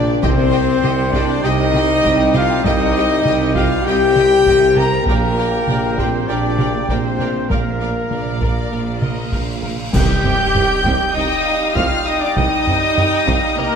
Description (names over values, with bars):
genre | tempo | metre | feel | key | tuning
cinematic, epic orchestral film score | 99 BPM | 4/4 | straight | C minor | A4 = 440 Hz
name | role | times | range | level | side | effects
rich symphonic violin section | melody | 0.0-13.8 s | Bb4 to G6 | -25 LUFS | left 4 dB | none
mellow woodwind section | sustained chords | 0.0-13.8 s | G3 to G5 | -26 LUFS | equal | none
warm French horn section | sustained chords | 0.0-13.8 s | G3 to Bb4 | -20 LUFS | left 4 dB | none
bright trumpet section | stabs | 0.0-13.8 s | Bb4 to Bb5 | -23 LUFS | right 1 dB | none
clear tuba | bass | 0.0-13.7 s | Bb1 to C2 | -25 LUFS | right 4 dB | none
rich studio double bass section | bass | 0.0-13.7 s | Bb1 to C2 | -25 LUFS | right 4 dB | none
rich symphonic cello section | bass | 0.0-13.7 s | Bb2 to C3 | -26 LUFS | right 3 dB | none
clear symphonic violin section | second line | 0.2-13.8 s | D5 to G5 | -29 LUFS | left 4 dB | none
rich symphonic viola section | accompaniment | 0.2-13.8 s | Bb3 to Bb4 | -26 LUFS | right 1 dB | none
taiko ensemble | drums | 0.2-13.8 s | none | -22 LUFS | equal | none
timpani | percussion | 0.2-1.1, 9.9-10.8 s | C3 | -26 LUFS | right 1 dB | none
cymbal swell and impact | sound effects | 9.1-12.4 s | none | -32 LUFS | equal | none
silver concert flute | second line | 9.9-13.8 s | Bb4 to G5 | -24 LUFS | equal | none
clash cymbals and concert bass drum | percussion | 9.9-11.1 s | none | -26 LUFS | equal | none
room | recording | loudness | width
wet scoring stage reverb, RT60 1.9 s | none | -14 LUFS | side -7 dB against mid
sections
0.0-9.9 A section; 9.9-13.8 B section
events
cymbal swell 9.1-9.9; band accent 9.9-10.5; impact 9.9-12.4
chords
0.2 Cm; 5.1 Gm/Bb; 7.5 Bb; 9.9 Cm